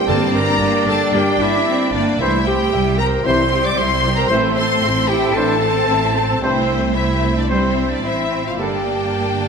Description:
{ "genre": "cinematic, heroic adventure film score", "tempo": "113 BPM", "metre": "4/4", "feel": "straight", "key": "unclear", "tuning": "A4 = 441 Hz", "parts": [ { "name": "rich symphonic violin section", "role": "melody", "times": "0.0-9.5 s", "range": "C5 to D6", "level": "-24 LUFS", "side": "left 3 dB", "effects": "none" }, { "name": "flute section", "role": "second line", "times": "0.0-9.5 s", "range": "C5 to D6", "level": "-24 LUFS", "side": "left 2 dB", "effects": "none" }, { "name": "mellow clarinet", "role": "second line", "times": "0.0-9.5 s", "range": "C4 to D5", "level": "-22 LUFS", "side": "equal", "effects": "none" }, { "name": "warm symphonic violin section", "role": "second line", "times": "0.0-9.5 s", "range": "G4 to A5", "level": "-28 LUFS", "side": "left 3 dB", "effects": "none" }, { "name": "rich symphonic viola section", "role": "accompaniment", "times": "0.0-9.5 s", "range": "G3 to A4", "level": "-25 LUFS", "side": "right 1 dB", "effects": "none" }, { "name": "mellow trombone section", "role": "sustained chords", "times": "0.0-8.8 s", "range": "G2 to G3", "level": "-27 LUFS", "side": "right 2 dB", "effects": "none" }, { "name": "warm trumpet", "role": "stabs", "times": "0.0-8.8 s", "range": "A4 to D5", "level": "-26 LUFS", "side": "right 2 dB", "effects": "none" }, { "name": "rich symphonic cello section", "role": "bass", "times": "0.0-9.5 s", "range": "F3 to E4", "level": "-23 LUFS", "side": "right 2 dB", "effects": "none" }, { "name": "mellow French horn section", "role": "sustained chords", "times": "0.1-8.8 s", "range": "Bb3 to E4", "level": "-27 LUFS", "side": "left 4 dB", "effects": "none" }, { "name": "rich symphonic double bass section", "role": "bass", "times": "0.1-9.5 s", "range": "G1 to C2", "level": "-23 LUFS", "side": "right 2 dB", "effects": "none" }, { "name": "timpani", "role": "percussion", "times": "0.1-0.8 s", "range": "G2", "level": "-27 LUFS", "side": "left 1 dB", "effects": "none" } ], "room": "wet scoring stage reverb, RT60 1.6 s", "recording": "none", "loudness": "-15 LUFS", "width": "side -6 dB against mid", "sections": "0.0-9.5 A section", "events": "none", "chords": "0.1 Gm; 2.2 C; 4.3 Am; 6.4 C; 8.6 Gmadd9", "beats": "| 0.07 0.60 1.13 1.66 | 2.19 2.72 3.25 3.78 | 4.31 4.83 5.36 5.89 | 6.42 6.96 7.49 8.04 | 8.59 9.15" }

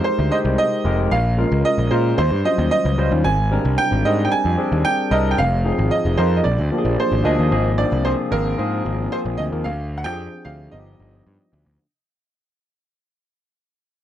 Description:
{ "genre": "polished 1980s jazz-funk pop", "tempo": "112 BPM", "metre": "4/4", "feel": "straight", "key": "unclear", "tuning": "A4 = 440 Hz", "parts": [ { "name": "bright baby grand piano", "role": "melody", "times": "0.0-11.5 s", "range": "Bb4 to Ab5", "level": "-22 LUFS", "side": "right 3 dB", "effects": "none" }, { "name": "barky tine electric piano", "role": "accompaniment", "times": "0.0-11.8 s", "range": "F3 to C5", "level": "-22 LUFS", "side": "left 2 dB", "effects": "overdrive, lush chorus" }, { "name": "fuzz picked electric bass", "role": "bass", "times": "0.2-11.8 s", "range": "F1 to Bb2", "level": "-20 LUFS", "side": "equal", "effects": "overdrive" } ], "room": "light reverb", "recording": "dry, close 1970s-style studio recording", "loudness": "-17 LUFS", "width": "side -11 dB against mid", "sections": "0.0-7.5 A section; 7.5-11.8 B section", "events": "fade-out 7.5-11.8", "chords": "0.0 Fm11; 1.1 Bbm7; 2.2 Eb13; 3.3 Abmaj9#11; 5.4 Fm7; 6.5 Bb7; 7.5 Ab69; 9.7 Dm7b5; 10.7 G7b13", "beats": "0.05 0.58 | 1.12 1.65 2.19 2.72 | 3.25 3.79 4.32 4.85 | 5.39 5.92 6.45 6.99 | 7.52 8.05 8.59 9.12 | 9.66 10.19 10.72 11.26" }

